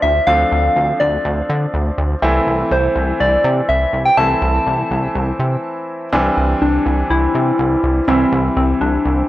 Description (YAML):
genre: synth-pop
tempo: 123 BPM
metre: 4/4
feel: straight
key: C major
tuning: A4 = 441 Hz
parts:
  - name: soft struck synth lead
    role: melody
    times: 0.0-9.3 s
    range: C4 to A5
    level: -16 LUFS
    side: left 1 dB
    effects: chorus
  - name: clear concert grand piano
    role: accompaniment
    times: 0.0-9.3 s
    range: E3 to E4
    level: -20 LUFS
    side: equal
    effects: none
  - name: chorused synth bass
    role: bass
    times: 0.0-9.2 s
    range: C2 to D3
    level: -18 LUFS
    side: equal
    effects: none
room: light reverb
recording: dry, gritty hardware recording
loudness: -14 LUFS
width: side -15 dB against mid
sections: 0.0-6.1 A section; 6.1-9.3 B section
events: break 5.6-6.1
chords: 0.0 Dm7; 2.2 Am/C; 6.1 Cadd9